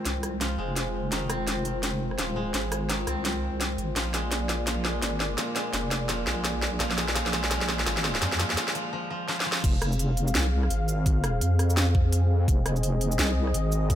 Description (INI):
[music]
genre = half-time drum and bass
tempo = 169 BPM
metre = 4/4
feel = swing 60% on 16ths, half-time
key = F dorian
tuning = A4 = 440 Hz
[part]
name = dark analog pad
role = sustained chords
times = 0.0-14.0 s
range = Ab3 to F5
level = -33 LUFS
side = equal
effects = chorus, sidechain pumping
[part]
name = koto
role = arpeggios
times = 0.0-9.7 s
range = Eb3 to F4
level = -33 LUFS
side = equal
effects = ping-pong delay
[part]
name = deep soft wobble bass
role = bass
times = 0.1-14.0 s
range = Eb1 to F2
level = -27 LUFS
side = equal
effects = chorus
[part]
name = drum and bass drum kit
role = drums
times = 0.1-14.0 s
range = crash cymbal, hi-hat, rim click, shaker, snare drum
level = -29 LUFS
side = equal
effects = high-pass filter on hats, high-pass filter on snare, high-pass filter on cymbals, high-pass filter on perc, high-pass filter on room
[part]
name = electronic kick drum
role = drums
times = 9.6-14.0 s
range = none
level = -24 LUFS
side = equal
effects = none
[sound]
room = light reverb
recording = none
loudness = -24 LUFS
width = side -11 dB against mid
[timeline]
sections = 0.0-9.6 A section; 9.6-14.0 B section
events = build-up 0.0-9.6; drum fill 0.0-8.9, 9.3-9.6; break 8.9-9.6; drop 9.6-14.0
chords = 0.0 Fm; 4.0 Bb; 9.6 Fm